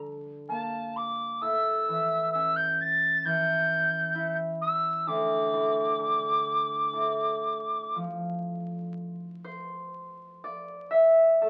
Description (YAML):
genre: celtic folk, Celtic slow air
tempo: 57-67 BPM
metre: 4/4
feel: rubato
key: D harmonic minor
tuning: A4 = 438 Hz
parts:
  - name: concert harp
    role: accompaniment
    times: 0.0-11.5 s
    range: D2 to E5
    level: -30 LUFS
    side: equal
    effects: none
  - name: mellow tin whistle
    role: melody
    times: 0.5-8.0 s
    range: A5 to A6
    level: -29 LUFS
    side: equal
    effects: none
room: wet studio reverb, RT60 0.5 s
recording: very old 78 rpm record, vinyl crackle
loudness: -27 LUFS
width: mono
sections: 0.0-9.0 A section; 9.0-11.5 B section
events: harp solo 9.0-11.5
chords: 0.0 Gm; 1.4 A7; 5.1 Dm; 9.0 N.C.